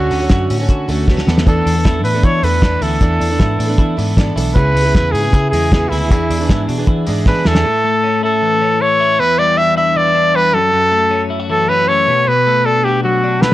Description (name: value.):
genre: jangly indie pop.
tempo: 156 BPM.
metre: 4/4.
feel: straight.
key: A mixolydian from 7.6 s.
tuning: A4 = 442 Hz.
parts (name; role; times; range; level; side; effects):
clear trumpet; melody; 0.0-13.5 s; E4 to E5; -14 LUFS; equal; none.
fingerpicked plugged-in twelve-string acoustic guitar; accompaniment; 0.0-7.7 s; C#3 to A4; -21 LUFS; right 4 dB; none.
twelve-string electric guitar; arpeggios; 0.0-13.5 s; E2 to F#4; -20 LUFS; left 4 dB; none.
vintage muted picked electric bass; bass; 0.0-7.6 s; B1 to E3; -18 LUFS; equal; none.
cloth-damped thuddy drum kit; drums; 0.1-7.6, 13.4-13.5 s; hi-hat, kick drum, snare drum; -15 LUFS; equal; none.
room: light reverb.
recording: dark, warm production.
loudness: -11 LUFS.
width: side -15 dB against mid.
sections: 0.0-7.6 A section; 7.6-13.5 B section.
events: drum fill 1.1-1.5, 7.3-7.6.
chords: 0.0 Dmaj7; 1.3 E7sus4; 4.6 C#m7; 6.1 E7; 7.6 A; 9.2 Em7; 10.5 F#m7; 12.1 Bm7.